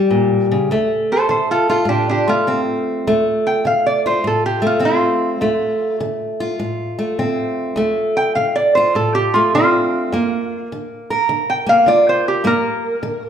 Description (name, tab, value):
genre	acoustic country blues, solo or duo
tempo	102 BPM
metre	4/4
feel	swing 68% on 8ths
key	D minor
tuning	A4 = 438 Hz
part	lap resonator guitar	melody	0.0-13.3 s	D4 to G5	-15 LUFS	right 1 dB	none
part	fingerpicked steel-string acoustic guitar	accompaniment	0.0-13.3 s	D2 to Bb4	-18 LUFS	equal	none
room	wet large studio reverb, RT60 1.3 s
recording	band playing live in one room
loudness	-15 LUFS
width	side -8 dB against mid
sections	0.7-13.3 A section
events	resonator guitar played with a steel bar solo 0.7-13.3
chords	0.0 A7b9 (rootless); 0.7 Dm7; 10.1 Gm7